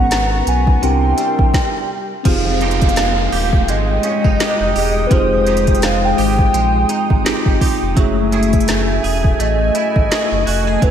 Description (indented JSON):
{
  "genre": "contemporary R&B",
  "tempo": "84 BPM",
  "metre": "4/4",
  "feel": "swing 58% on 16ths",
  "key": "unclear",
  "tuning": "A4 = 440 Hz",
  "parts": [
    { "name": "hollow clarinet-like synth lead", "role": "melody", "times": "0.0-10.9 s", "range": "B4 to Ab5", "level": "-19 LUFS", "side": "equal", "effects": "chorus" },
    { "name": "tine electric piano", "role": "accompaniment", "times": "0.0-10.9 s", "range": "A3 to Bb4", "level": "-23 LUFS", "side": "left 1 dB", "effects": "medium stereo tremolo" },
    { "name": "warm analog pad", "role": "sustained chords", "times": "0.0-10.9 s", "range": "Ab3 to Eb6", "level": "-22 LUFS", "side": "left 1 dB", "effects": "chorus" },
    { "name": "direct-recorded clean electric guitar", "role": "arpeggios", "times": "0.0-10.9 s", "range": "Ab2 to Ab4", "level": "-24 LUFS", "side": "right 6 dB", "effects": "ensemble chorus" },
    { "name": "sub bass with octave", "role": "bass", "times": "0.0-10.9 s", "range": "Eb1 to C2", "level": "-19 LUFS", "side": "equal", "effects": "none" },
    { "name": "smooth R&B drum kit", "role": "drums", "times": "0.1-10.9 s", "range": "crash cymbal, hi-hat, kick drum, snare drum", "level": "-18 LUFS", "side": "equal", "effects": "none" },
    { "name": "downlifter", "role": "sound effects", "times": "2.3-8.0 s", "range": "none", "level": "-26 LUFS", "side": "right 1 dB", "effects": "none" }
  ],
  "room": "moderate lush hall reverb, RT60 3.0 s",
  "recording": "dreamy mix soaked in reverb",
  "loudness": "-13 LUFS",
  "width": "side -9 dB against mid",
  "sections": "0.0-2.3 A section; 2.3-10.9 B section",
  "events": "stop 1.5-2.3",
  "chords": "0.0 Abm11; 0.8 C7; 2.3 Fm9; 8.0 Gbm9",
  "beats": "0.11 0.82 1.54 | 2.25 2.96 3.68 4.39 | 5.11 5.82 6.54 7.25 | 7.96 8.68 9.39 10.11 | 10.82"
}